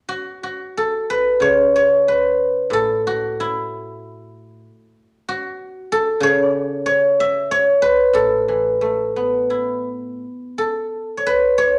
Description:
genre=chinese traditional, Chinese solo plucked strings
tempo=80-98 BPM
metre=4/4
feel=rubato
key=A gong mode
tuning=A4 = 441 Hz
part: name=guzheng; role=solo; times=0.1-11.8 s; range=A2 to E5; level=-19 LUFS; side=equal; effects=none
room=moderate large studio reverb, RT60 1.1 s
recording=none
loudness=-18 LUFS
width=mono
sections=0.1-10.6 A section; 10.6-11.8 B section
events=none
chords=none

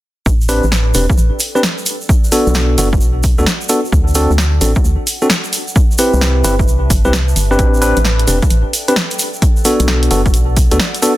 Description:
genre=UK garage, two-step garage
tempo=131 BPM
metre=4/4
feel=swing 65% on 16ths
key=A dorian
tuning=A4 = 440 Hz
part: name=organ-like FM bass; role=bass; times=0.3-10.8 s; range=E1 to D2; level=-14 LUFS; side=equal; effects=tube saturation
part: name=electronic kick drum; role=drums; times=0.3-10.7 s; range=none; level=-13 LUFS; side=equal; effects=none
part: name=egg shaker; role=percussion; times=0.3-11.1 s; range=none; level=-23 LUFS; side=right 3 dB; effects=none
part: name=warbly tape-like pad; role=texture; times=1.3-11.2 s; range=A4 to A5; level=-33 LUFS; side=left 2 dB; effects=chorus, built-in reverb, sidechain pumping
part: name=tine electric piano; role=stabs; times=0.5-11.1 s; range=B3 to B4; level=-16 LUFS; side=equal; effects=digital delay
part: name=punchy analog drum machine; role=drums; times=0.5-11.1 s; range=hi-hat, snare drum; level=-18 LUFS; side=equal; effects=none
room=digital ambience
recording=dense, heavily limited modern master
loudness=-11 LUFS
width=side -16 dB against mid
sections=0.3-11.2 A section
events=fade-in on ambient pad 0.3-11.2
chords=0.3 Am11; 2.1 Bm7; 3.9 D7; 5.5 Cmaj7; 7.6 Am11; 9.4 Bm7

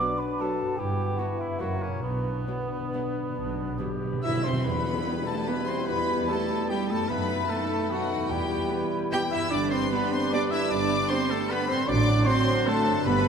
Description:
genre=classical, orchestral ballroom waltz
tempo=130-165 BPM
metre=3/4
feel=rubato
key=B minor, E minor from 4.6 s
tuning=A4 = 443 Hz
part: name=warm chamber violin section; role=melody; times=0.0-13.3 s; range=D4 to G6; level=-34 LUFS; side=left 6 dB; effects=none
part: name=mellow cor anglais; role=second line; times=0.0-13.3 s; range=B3 to D5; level=-36 LUFS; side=right 1 dB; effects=none
part: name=mellow hollow concert flute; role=second line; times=0.0-13.3 s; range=B4 to G6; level=-35 LUFS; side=left 1 dB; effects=none
part: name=warm chamber violin section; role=second line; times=0.0-13.3 s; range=A#3 to G5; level=-36 LUFS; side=left 5 dB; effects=none
part: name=warm clarinet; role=second line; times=0.0-13.3 s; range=B3 to G4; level=-37 LUFS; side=left 1 dB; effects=none
part: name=mellow bassoon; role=accompaniment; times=0.0-13.3 s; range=F#3 to B3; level=-35 LUFS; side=right 2 dB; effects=none
part: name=warm chamber viola section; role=accompaniment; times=0.0-12.7 s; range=E3 to A4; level=-39 LUFS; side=right 2 dB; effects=none
part: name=mellow French horn section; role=sustained chords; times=0.0-13.3 s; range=B3 to G4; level=-36 LUFS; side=left 4 dB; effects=none
part: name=warm trombone section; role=sustained chords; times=0.0-13.3 s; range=B2 to B3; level=-38 LUFS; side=right 3 dB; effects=none
part: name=concert harp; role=arpeggios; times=0.0-13.3 s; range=E2 to C5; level=-38 LUFS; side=left 8 dB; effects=none
part: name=dark chamber cello section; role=bass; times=0.8-13.3 s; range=F#2 to G4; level=-31 LUFS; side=right 3 dB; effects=none
part: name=dark chamber double bass section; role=bass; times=0.8-13.3 s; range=F#1 to F#2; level=-32 LUFS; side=right 2 dB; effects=none
part: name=cymbal swell and tam-tam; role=percussion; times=2.0-6.2 s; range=none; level=-42 LUFS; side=left 2 dB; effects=none
part: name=timpani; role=percussion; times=2.0-4.6, 7.1-7.7 s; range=F#2 to B2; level=-35 LUFS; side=right 2 dB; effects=none
part: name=mellow trumpet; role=stabs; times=4.2-13.3 s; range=F#4 to G5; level=-33 LUFS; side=right 2 dB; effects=none
room=wet concert hall reverb, RT60 2.5 s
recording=none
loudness=-24 LUFS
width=side -6 dB against mid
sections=0.0-4.6 A section; 4.6-13.3 B section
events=timpani fill 2.0-4.6; band accent 4.6-5.0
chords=0.0 Bm; 0.8 Em/G; 1.6 F#7; 2.0 Bm; 4.6 Em; 7.1 B7/F#; 8.3 Em; 9.5 G; 11.9 D7/A

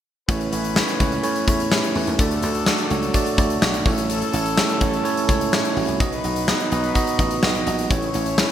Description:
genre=1980s-style pop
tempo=126 BPM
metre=4/4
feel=straight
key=unclear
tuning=A4 = 440 Hz
part: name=bell-like tine electric piano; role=accompaniment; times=0.3-8.5 s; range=A3 to E5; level=-22 LUFS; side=right 3 dB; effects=none
part: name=warm horn section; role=stabs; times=0.3-8.5 s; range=E3 to C#5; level=-28 LUFS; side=left 4 dB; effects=none
part: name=dry thumbed slap bass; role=bass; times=0.3-8.4 s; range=A1 to A2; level=-27 LUFS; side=left 1 dB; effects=none
part: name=big rock drum kit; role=drums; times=0.3-8.5 s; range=hi-hat, kick drum, snare drum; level=-22 LUFS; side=left 1 dB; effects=gated reverb
room=moderate lush hall reverb, RT60 1.7 s, small room ambience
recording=bright 1980s-style digital production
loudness=-18 LUFS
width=side -10 dB against mid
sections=0.3-8.5 A section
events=none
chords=0.3 A; 2.2 D; 3.9 A; 6.0 B; 7.9 A

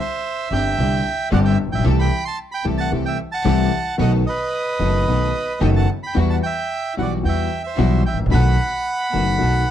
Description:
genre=tango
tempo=111 BPM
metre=4/4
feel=rubato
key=E minor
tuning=A4 = 441 Hz
part: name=bandoneon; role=melody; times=0.0-9.7 s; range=B4 to C6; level=-23 LUFS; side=right 3 dB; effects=plate reverb
part: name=warm concert grand piano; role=accompaniment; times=0.5-9.6 s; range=F#1 to G4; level=-21 LUFS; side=left 4 dB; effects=none
part: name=clear studio string section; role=stabs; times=0.5-9.6 s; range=G3 to A4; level=-32 LUFS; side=right 2 dB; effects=none
part: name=upright bass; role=bass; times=0.5-9.6 s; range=F#1 to E2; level=-20 LUFS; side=right 1 dB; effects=none
room=light reverb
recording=dark, warm production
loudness=-17 LUFS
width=side -10 dB against mid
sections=0.0-9.7 A section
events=none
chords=0.0 Csus2; 1.8 Am7/C; 4.0 B7; 6.2 Emadd9; 8.3 B7

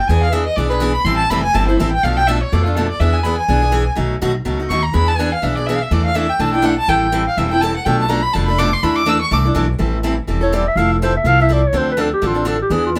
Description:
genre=acoustic string swing (jazz manouche)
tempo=247 BPM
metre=4/4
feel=swing 56% on 8ths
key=A minor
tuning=A4 = 441 Hz
part: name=rich violin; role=second line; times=0.0-9.4 s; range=F4 to E6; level=-21 LUFS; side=equal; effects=none
part: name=picked steel-string acoustic guitar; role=accompaniment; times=0.1-13.0 s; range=B2 to A4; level=-22 LUFS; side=equal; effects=none
part: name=upright bass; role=bass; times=0.1-13.0 s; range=E1 to F2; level=-21 LUFS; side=equal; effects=none
part: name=mellow clarinet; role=melody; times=10.4-13.0 s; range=F4 to F5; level=-20 LUFS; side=equal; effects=none
room=light reverb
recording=band playing live in one room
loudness=-16 LUFS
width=mono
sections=0.0-2.0 A section; 2.0-9.8 A section; 9.8-13.0 A section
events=violin solo 0.0-9.8; clarinet solo 9.8-13.0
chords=0.1 E7; 1.1 Am7; 2.0 Bm7b5; 3.0 E7; 4.0 B7; 4.9 E7; 5.9 E7sus4; 6.9 Am7; 7.9 Bm7b5; 8.8 E7sus4; 9.8 Am7; 10.8 Fmaj7; 11.7 Dm7

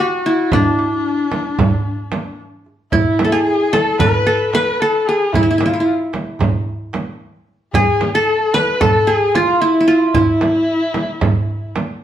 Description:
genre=Turkish makam ensemble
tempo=224 BPM (eighths)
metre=9/8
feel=straight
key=E makam hicaz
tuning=A4 = 436 Hz
part: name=qanun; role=melody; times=0.0-11.7 s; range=D4 to B4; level=-15 LUFS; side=equal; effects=none
part: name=warm kamancheh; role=second line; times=0.0-11.7 s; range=D4 to B4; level=-21 LUFS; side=left 3 dB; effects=none
part: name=darbuka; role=percussion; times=0.3-11.9 s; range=none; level=-21 LUFS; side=right 2 dB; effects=none
part: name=frame drum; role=percussion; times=0.5-11.9 s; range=none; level=-20 LUFS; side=right 3 dB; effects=none
room=wet large studio reverb, RT60 0.9 s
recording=band playing live in one room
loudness=-14 LUFS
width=side -10 dB against mid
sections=0.0-2.9 A section; 2.9-12.0 B section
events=none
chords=none

